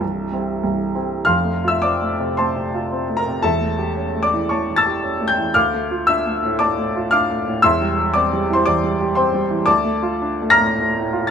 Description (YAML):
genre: classical, romantic character piece for solo piano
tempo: 93-121 BPM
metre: 4/4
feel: rubato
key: F major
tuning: A4 = 440 Hz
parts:
  - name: warm upright piano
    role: solo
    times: 0.0-11.3 s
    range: C1 to Bb6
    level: -16 LUFS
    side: equal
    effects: none
room: light reverb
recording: minimal, uncompressed stereo recording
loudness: -16 LUFS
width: side -7 dB against mid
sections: 0.0-1.3 A section; 1.3-11.3 B section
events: none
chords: 0.0 C; 1.3 F; 3.4 A7/E; 5.5 Dm; 7.6 C/E; 9.7 Dm